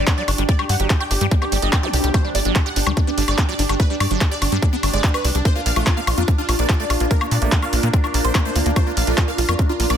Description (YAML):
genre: psychedelic trance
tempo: 145 BPM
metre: 4/4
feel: straight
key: unclear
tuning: A4 = 439 Hz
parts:
  - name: bubbling stepped-filter texture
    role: sustained chords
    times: 0.0-10.0 s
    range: D4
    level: -29 LUFS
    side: right 1 dB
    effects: chorus, built-in reverb, sidechain pumping
  - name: liquid acid bass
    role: riff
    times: 0.0-10.0 s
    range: F#3 to G4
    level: -28 LUFS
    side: moving between left 4 dB and right 6 dB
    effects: phaser, auto-pan, sidechain pumping, ping-pong delay
  - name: tight sequencer bass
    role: bass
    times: 0.0-10.0 s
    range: G1 to Bb2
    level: -20 LUFS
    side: equal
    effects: tube saturation
  - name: ethereal airy pad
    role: texture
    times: 0.0-10.0 s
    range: D4 to Bb5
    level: -29 LUFS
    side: right 1 dB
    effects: ensemble chorus, built-in reverb, sidechain pumping
  - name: supersaw stab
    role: melody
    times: 0.1-9.9 s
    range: Bb3 to G5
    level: -25 LUFS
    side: right 1 dB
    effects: phaser, sidechain pumping, ping-pong delay
  - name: drum and bass drum kit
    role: drums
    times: 0.1-10.0 s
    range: handclaps, hi-hat, woodblock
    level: -24 LUFS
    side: left 1 dB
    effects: overdrive, small room ambience
  - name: electronic kick drum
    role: drums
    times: 0.1-9.7 s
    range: none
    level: -18 LUFS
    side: equal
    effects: overdrive, small room ambience
  - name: zap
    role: sound effects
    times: 1.8-1.9 s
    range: none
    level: -31 LUFS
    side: equal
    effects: none
room: little or no reverb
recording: dense, heavily limited modern master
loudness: -16 LUFS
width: side -9 dB against mid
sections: 0.0-10.0 A section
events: none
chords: 0.0 G5; 5.5 Bb5